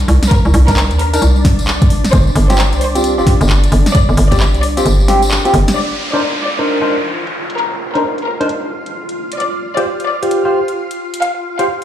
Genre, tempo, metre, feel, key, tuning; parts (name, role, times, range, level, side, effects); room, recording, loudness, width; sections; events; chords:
UK garage, two-step garage; 132 BPM; 4/4; swing 63% on 16ths; C minor; A4 = 440 Hz
soft string machine; sustained chords; 0.0-11.8 s; D4 to F5; -24 LUFS; left 1 dB; ensemble chorus, sidechain pumping
hollow knocking FM bass; bass; 0.0-5.6 s; F1 to Eb2; -12 LUFS; equal
garage drum kit; drums; 0.0-11.8 s; crash cymbal, handclaps, hi-hat, snare drum; -20 LUFS; equal; low-pass filter on snare, low-pass filter on hats, low-pass filter on cymbals
tambourine; percussion; 0.0-5.7 s; -27 LUFS; left 4 dB
clear studio violin section; melody; 0.3-11.8 s; Bb4 to F5; -20 LUFS; left 2 dB; digital delay
electronic kick drum; drums; 0.3-4.4 s; -13 LUFS; equal; overdrive
barky tine electric piano; stabs; 0.7-11.7 s; C4 to C5; -17 LUFS; equal; overdrive, lush chorus, dub echo
downlifter; sound effects; 5.8-9.4 s; -23 LUFS; equal
light reverb; played on a big sound system in a bare room, stone room reverb; -11 LUFS; side -11 dB against mid
0.0-5.8 A section; 5.8-11.8 B section
kick drops out 4.9-5.8; band accent 5.3; filter sweep on drum 5.8-11.8
0.0 Cm9; 1.9 G7sus4; 5.8 Cm9; 9.2 G7sus4